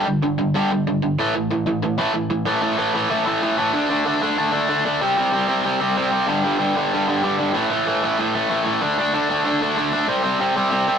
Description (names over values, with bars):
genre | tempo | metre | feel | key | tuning
punk | 188 BPM | 4/4 | straight | unclear | A4 = 440 Hz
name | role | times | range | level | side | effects
overdriven electric guitar | solo | 0.0-11.0 s | G2 to D4 | -18 LUFS | equal | none
room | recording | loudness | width
moderate studio reverb, RT60 0.6 s | rough rehearsal-room recording, tube saturation | -18 LUFS | side -7 dB against mid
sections
0.0-2.5 A section; 2.5-11.0 B section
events
none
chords
0.0 G5; 1.2 A5; 3.7 D5; 5.0 C5; 6.3 G5; 7.6 A5; 8.8 D5; 10.1 C5